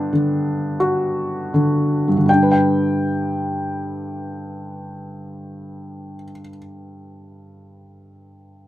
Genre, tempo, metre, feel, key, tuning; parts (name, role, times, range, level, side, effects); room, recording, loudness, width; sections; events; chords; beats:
classical, lyrical solo piano; 40-47 BPM; 4/4; rubato; G major; A4 = 440 Hz
felt-muted upright piano; solo; 0.0-8.7 s; G2 to G5; -19 LUFS; equal
light reverb; close, detailed microphones; -17 LUFS; side -14 dB against mid
0.0-2.3 A section; 2.3-8.1 B section
slowing down 0.0-2.3
0.0 Gmaj7; 2.3 G
0.81 | 2.29 3.79 5.22 6.65